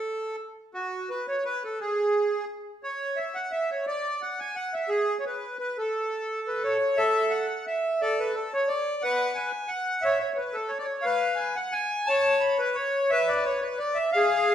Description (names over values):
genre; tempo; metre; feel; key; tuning
musette; 175 BPM; 3/4; swing 54% on 8ths; A major; A4 = 439 Hz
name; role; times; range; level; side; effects
accordion; solo; 0.0-14.5 s; F#4 to B5; -24 LUFS; equal; none
room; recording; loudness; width
wet large studio reverb, RT60 1.2 s; band playing live in one room; -24 LUFS; side -10 dB against mid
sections
0.0-7.0 A section; 7.0-14.5 B section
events
none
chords
none